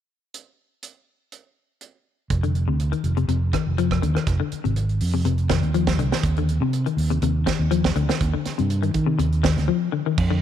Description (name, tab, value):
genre	afrobeat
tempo	122 BPM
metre	4/4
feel	swing 53% on 16ths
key	F dorian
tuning	A4 = 441 Hz
part	tight funk drum kit	drums	0.3-10.3 s	crash cymbal, hi-hat, kick drum, rim click, snare drum	-26 LUFS	right 4 dB	none
part	fingered electric bass	bass	2.3-10.4 s	F1 to Eb3	-21 LUFS	right 1 dB	none
part	semi-hollow electric guitar	arpeggios	2.4-10.4 s	C3 to F3	-25 LUFS	left 10 dB	ensemble chorus
room	light reverb, studio ambience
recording	1960s-style stereo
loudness	-20 LUFS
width	side -10 dB against mid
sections	0.3-2.3 A section; 2.3-10.2 B section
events	break 9.7-10.2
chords	0.3 N.C.; 2.3 F7(no3); 6.2 Ebmaj7(no3)